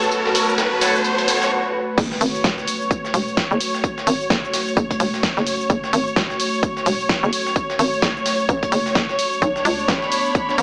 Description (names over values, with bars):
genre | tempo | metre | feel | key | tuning
bass house | 129 BPM | 4/4 | swing 60% on 16ths | F# minor | A4 = 441 Hz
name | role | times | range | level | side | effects
deep dark ambient pad | sustained chords | 0.0-10.6 s | A3 to C#5 | -26 LUFS | equal | chorus, built-in reverb, sidechain pumping
big-room dance drum kit | drums | 0.0-10.6 s | crash cymbal, hi-hat, shaker, snare drum | -24 LUFS | equal | small room ambience
breakbeat sampler-style drum kit | drums | 0.0-10.6 s | hi-hat, snare drum, tambourine | -28 LUFS | equal | high-pass filter on perc, small room ambience, high-pass filter on snare, high-pass filter on hats
riser, swell and impact | sound effects | 0.0-3.8 s | none | -22 LUFS | equal | none
rich studio string section | texture | 0.0-10.6 s | D4 to B5 | -23 LUFS | equal | sidechain pumping
band-passed chord stab | stabs | 0.3-0.9 s | F#4 to C#5 | -24 LUFS | equal | phaser, sidechain pumping, dub echo
hollow knocking FM bass | bass | 2.0-10.6 s | E1 to C#2 | -20 LUFS | equal | tube saturation, sidechain pumping
electronic kick drum | drums | 2.0-10.5 s | none | -21 LUFS | equal | small room ambience
room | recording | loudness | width
moderate plate reverb, RT60 1.8 s, digital ambience | small speaker sound | -17 LUFS | side -36 dB against mid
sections
0.0-2.0 A section; 2.0-10.6 B section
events
build-up 0.0-2.0; riser 0.0-1.5; swell 1.0-2.0; break 1.5-2.0; drop 2.0-10.6; impact 2.0-3.8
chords
0.0 F#m; 9.4 Bmadd9